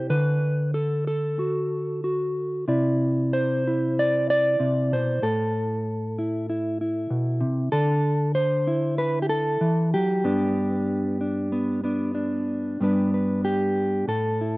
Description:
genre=folk, solo fingerstyle acoustic guitar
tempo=95 BPM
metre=4/4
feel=straight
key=G major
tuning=A4 = 440 Hz
part: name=mellow electric guitar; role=solo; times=0.0-14.6 s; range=G2 to D5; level=-22 LUFS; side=equal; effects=none
room=light reverb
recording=recorded outdoors, with no room sound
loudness=-22 LUFS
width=side -22 dB against mid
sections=0.0-12.8 A section; 12.8-14.6 B section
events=none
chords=0.1 D; 2.7 Cadd9; 5.2 Asus2; 7.7 Dsus2; 10.2 G

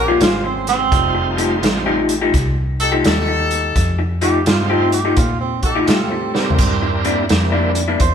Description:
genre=electric blues shuffle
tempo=85 BPM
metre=4/4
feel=swing 65% on 8ths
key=F mixolydian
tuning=A4 = 440 Hz
part: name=warm tenor saxophone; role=second line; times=0.0-8.1 s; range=C4 to C5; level=-21 LUFS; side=right 7 dB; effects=none
part: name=bright horn section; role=stabs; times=0.0-6.6 s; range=Db4 to C5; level=-22 LUFS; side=left 3 dB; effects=none
part: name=vintage muted fingered electric bass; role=bass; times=0.0-8.1 s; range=F1 to Bb2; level=-22 LUFS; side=equal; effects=none
part: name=electric guitar through a small old amp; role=riff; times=0.1-8.0 s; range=Bb2 to G4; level=-19 LUFS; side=left 3 dB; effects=spring reverb
part: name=vintage drum kit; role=drums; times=0.2-8.1 s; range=hi-hat, kick drum, snare drum, splash cymbal, toms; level=-19 LUFS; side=equal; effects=none
part: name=bright tonewheel organ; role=accompaniment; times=0.9-7.7 s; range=G3 to Bb4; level=-23 LUFS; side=right 3 dB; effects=slow rotary speaker, overdrive
room=moderate stone room reverb, RT60 1.3 s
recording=band playing live in one room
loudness=-14 LUFS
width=side -8 dB against mid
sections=0.0-8.1 A section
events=tenor saxophone solo 0.0-8.1; drum fill 6.2-6.6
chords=0.0 Bbm7; 0.9 F9; 6.6 C9

